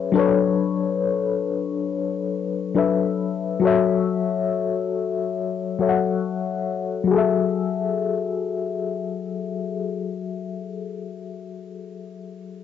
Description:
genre	R&B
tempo	69 BPM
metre	4/4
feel	straight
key	F# minor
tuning	A4 = 440 Hz
part	mellow FM electric piano	accompaniment	0.0-12.6 s	F#3 to F#5	-22 LUFS	left 7 dB	chorus, tremolo, low-pass filter, cassette tape
room	light reverb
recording	home recording on cassette, nothing above 7.7 kHz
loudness	-21 LUFS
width	side -8 dB against mid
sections	0.0-7.1 A section; 7.1-10.6 B section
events	none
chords	0.1 E13sus4/F#; 3.6 F#m7

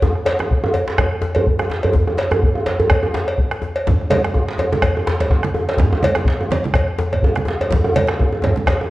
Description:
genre	west african traditional, West African drum ensemble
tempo	125 BPM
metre	4/4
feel	swing 55% on 16ths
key	none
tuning	none
part	bombo	percussion	0.0-8.9 s	none	-20 LUFS	equal	none
part	djembe	percussion	0.0-8.8 s	none	-24 LUFS	left 2 dB	none
part	djembe	percussion	0.0-8.9 s	none	-20 LUFS	right 1 dB	none
part	cowbell	percussion	0.3-8.8 s	none	-23 LUFS	equal	none
part	congas	percussion	3.9-8.7 s	none	-22 LUFS	right 2 dB	none
room	wet recital hall reverb, RT60 1.4 s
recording	worn, warbling old tape, cassette tape, warbly pitch drift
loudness	-15 LUFS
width	side -17 dB against mid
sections	0.0-8.9 A section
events	none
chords	none

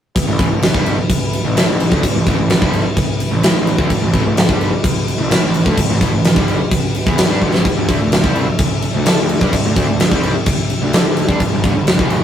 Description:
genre	hard rock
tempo	128 BPM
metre	4/4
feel	straight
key	unclear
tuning	A4 = 439 Hz
part	mellow tonewheel organ	sustained chords	0.1-12.2 s	G3 to E5	-28 LUFS	equal	none
part	huge arena drum kit	drums	0.2-12.2 s	crash cymbal, kick drum, snare drum	-14 LUFS	equal	none
part	distorted electric guitar	riff	0.3-12.2 s	E2 to A4	-20 LUFS	right 1 dB	distortion
part	fuzz picked electric bass	bass	0.3-12.2 s	E1 to D3	-21 LUFS	equal	overdrive
room	moderate small room reverb, RT60 0.5 s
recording	rough rehearsal-room recording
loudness	-13 LUFS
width	side -9 dB against mid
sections	0.2-12.2 A section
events	drum fill 7.4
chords	0.2 A5; 7.8 D5; 11.5 G5

